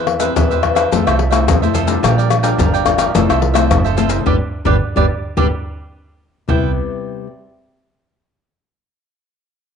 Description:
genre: samba and choro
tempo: 108 BPM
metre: 4/4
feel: straight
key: C major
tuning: A4 = 440 Hz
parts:
  - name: cavaquinho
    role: accompaniment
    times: 0.0-6.7 s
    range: D4 to G5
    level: -22 LUFS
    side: right 11 dB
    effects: none
  - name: nylon-string guitar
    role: accompaniment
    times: 0.0-7.3 s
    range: Bb2 to B4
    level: -20 LUFS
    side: left 7 dB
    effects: none
  - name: upright bass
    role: bass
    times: 0.0-6.7 s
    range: F1 to F2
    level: -19 LUFS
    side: right 3 dB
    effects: none
  - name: pandeiro, tamborim, maracas and surdo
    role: percussion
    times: 0.1-6.6 s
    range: none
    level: -16 LUFS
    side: left 4 dB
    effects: none
room: moderate spring reverb, RT60 1.1 s, small room reverb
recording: 1960s-style stereo with parts hard left and right, nothing above 11.0 kHz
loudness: -13 LUFS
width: side -7 dB against mid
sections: 0.0-6.5 A section; 6.5-8.7 B section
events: band accent 4.3-6.5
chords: 0.0 Cmaj7/E; 0.9 Fmaj7; 2.0 Bb6; 3.1 Fmaj7; 4.3 G; 6.5 Cmaj7

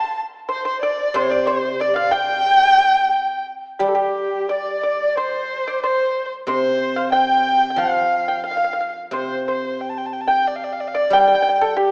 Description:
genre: chinese traditional, Chinese chamber ensemble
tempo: 91 BPM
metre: 2/4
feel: rubato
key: G shang mode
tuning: A4 = 440 Hz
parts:
  - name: warm erhu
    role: melody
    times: 0.0-11.9 s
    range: G4 to A5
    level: -21 LUFS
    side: equal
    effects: none
  - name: bright reedy tenor recorder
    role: second line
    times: 0.0-11.9 s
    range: G4 to A5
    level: -21 LUFS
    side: equal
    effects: none
  - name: pipa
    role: second line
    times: 0.0-11.9 s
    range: G4 to A5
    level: -22 LUFS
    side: equal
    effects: none
  - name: guzheng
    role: accompaniment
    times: 1.1-11.9 s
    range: C3 to G3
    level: -24 LUFS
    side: equal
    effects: none
room: wet recital hall reverb, RT60 1.8 s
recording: small speaker sound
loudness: -16 LUFS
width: side -33 dB against mid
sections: 0.0-3.8 A section; 3.8-11.9 B section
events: none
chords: none

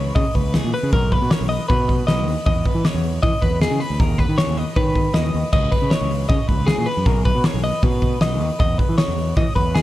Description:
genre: math rock and midwest emo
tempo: 156 BPM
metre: 4/4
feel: straight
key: B major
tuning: A4 = 441 Hz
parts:
  - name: twelve-string electric guitar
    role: arpeggios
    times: 0.0-9.8 s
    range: G#4 to D#5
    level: -23 LUFS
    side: left 1 dB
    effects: dub echo
  - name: growling fingered electric bass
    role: bass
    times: 0.0-9.8 s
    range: B1 to E3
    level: -22 LUFS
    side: equal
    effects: overdrive
  - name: loose indie drum kit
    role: drums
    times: 0.2-9.8 s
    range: crash cymbal, hi-hat, kick drum, snare drum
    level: -19 LUFS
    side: equal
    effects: none
room: small room ambience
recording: echo-heavy mix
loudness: -16 LUFS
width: side -15 dB against mid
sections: 0.0-9.8 A section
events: none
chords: 0.0 C#sus2; 0.9 Bmaj7; 2.5 Emaj7; 4.0 Bmaj7/D#; 5.5 C#7sus2; 7.1 B; 8.6 Emaj7(no3)

